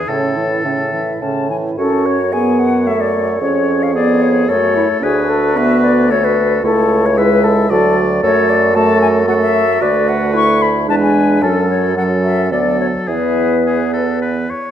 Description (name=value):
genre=quick classical-period movement for wind quintet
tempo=105-114 BPM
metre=3/4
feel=rubato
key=F# minor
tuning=A4 = 440 Hz
part: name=concert flute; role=melody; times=0.0-14.2 s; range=G#4 to C#6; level=-17 LUFS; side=left 6 dB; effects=none
part: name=clear oboe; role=second line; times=0.0-14.7 s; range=G#4 to E5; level=-22 LUFS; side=left 2 dB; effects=none
part: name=clear clarinet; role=accompaniment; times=0.0-14.5 s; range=B3 to A4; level=-20 LUFS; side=right 7 dB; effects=none
part: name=warm French horn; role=accompaniment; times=0.0-14.5 s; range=C#3 to D4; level=-18 LUFS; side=equal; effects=none
part: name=warm bassoon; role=bass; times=0.1-14.5 s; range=C#2 to A2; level=-18 LUFS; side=right 2 dB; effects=none
room=wet recital hall reverb, RT60 1.4 s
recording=dark, warm production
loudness=-12 LUFS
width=side -10 dB against mid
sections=0.0-1.8 A section; 1.8-14.7 B section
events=none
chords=0.1 A; 1.8 F#m; 3.4 C#/E#; 4.5 F#m; 5.0 D; 6.6 A/C#; 7.7 D; 8.2 F#m; 9.8 Bm7/D; 10.9 E7; 11.4 F#m; 12.5 Bm7/D; 13.1 E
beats=| 0.08 0.65 1.21 | 1.78 2.32 2.87 | 3.41 3.95 4.49 | 5.03 5.57 6.10 | 6.64 7.17 7.70 | 8.23 8.76 9.29 | 9.81 10.34 10.88 | 11.42 11.96 12.52 | 13.08 13.65 14.21